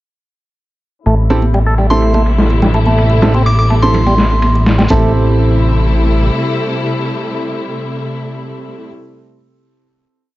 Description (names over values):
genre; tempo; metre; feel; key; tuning
breakbeat, breaks; 125 BPM; 4/4; straight; A minor; A4 = 440 Hz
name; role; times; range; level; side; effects
warm studio string section; sustained chords; 1.1-8.9 s; C3 to E4; -19 LUFS; left 2 dB; sidechain pumping, low-pass filter
percussive tonewheel organ; riff; 1.1-5.1 s; G3 to A4; -19 LUFS; right 1 dB; overdrive, tube saturation, low-pass filter, digital delay
fat analog bass; bass; 1.1-6.3 s; A1; -12 LUFS; equal; tube saturation
dusty soul sampler-style drum kit; drums; 1.1-5.0 s; hi-hat, kick drum, ride cymbal, snare drum; -18 LUFS; equal; overdrive, low-pass filter on cymbals, studio reverb, low-pass filter on snare, low-pass filter on hats, low-pass filter on kick
warm baby grand piano; stabs; 1.3-8.9 s; C4 to A4; -20 LUFS; right 3 dB; digital delay
bongos and congas; percussion; 1.3-4.9 s; none; -22 LUFS; right 3 dB; none
glassy synth bell; melody; 1.9-4.5 s; C6 to D6; -19 LUFS; equal; chorus, small speaker sound, vintage 12-bit sampler grit, digital delay
room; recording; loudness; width
little or no reverb; nothing above 7.7 kHz; -10 LUFS; side -17 dB against mid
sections
1.1-4.9 breakdown; 4.9-8.7 final chord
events
filter sweep on string section 1.1-4.9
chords
1.1 Am7